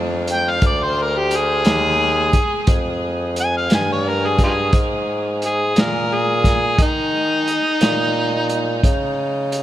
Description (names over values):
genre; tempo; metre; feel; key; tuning
slow blues; 58 BPM (dotted quarters); 12/8; straight; Bb mixolydian; A4 = 440 Hz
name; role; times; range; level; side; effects
warm bassoon; bass; 0.0-9.6 s; D2 to Eb3; -22 LUFS; equal; none
overdriven harmonica; melody; 0.3-8.8 s; Eb4 to Ab5; -19 LUFS; equal; none
vintage drum kit; drums; 0.3-9.6 s; hi-hat, kick drum, snare drum; -20 LUFS; equal; none
room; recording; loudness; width
moderate huge ambient reverb, RT60 7.2 s; dreamy mix soaked in reverb; -16 LUFS; side -13 dB against mid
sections
0.0-9.6 A section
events
harmonica solo 0.0-9.6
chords
0.0 Bb7; 6.8 Eb5